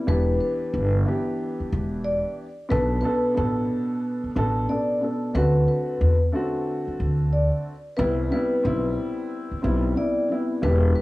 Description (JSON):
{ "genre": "hip hop", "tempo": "91 BPM", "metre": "4/4", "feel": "swing 63% on 16ths", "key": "unclear", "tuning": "A4 = 439 Hz", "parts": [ { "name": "dark baby grand piano", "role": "accompaniment", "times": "0.0-11.0 s", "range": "B2 to A4", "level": "-26 LUFS", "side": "equal", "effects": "high-pass filter, low-pass filter, cassette tape" }, { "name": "vibraphone with medium mallets", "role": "melody", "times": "0.1-11.0 s", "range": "B4 to D5", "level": "-27 LUFS", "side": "left 1 dB", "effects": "high-pass filter, low-pass filter, cassette tape, analog delay" }, { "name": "upright bass", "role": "bass", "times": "0.1-10.9 s", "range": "E1 to E2", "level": "-22 LUFS", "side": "equal", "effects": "none" } ], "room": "light reverb", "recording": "home recording on cassette, small room ambience", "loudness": "-21 LUFS", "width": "side -19 dB against mid", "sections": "0.0-11.0 A section", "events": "none", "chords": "0.1 Em7; 2.7 Bm7; 5.3 D7; 8.0 Cmaj7" }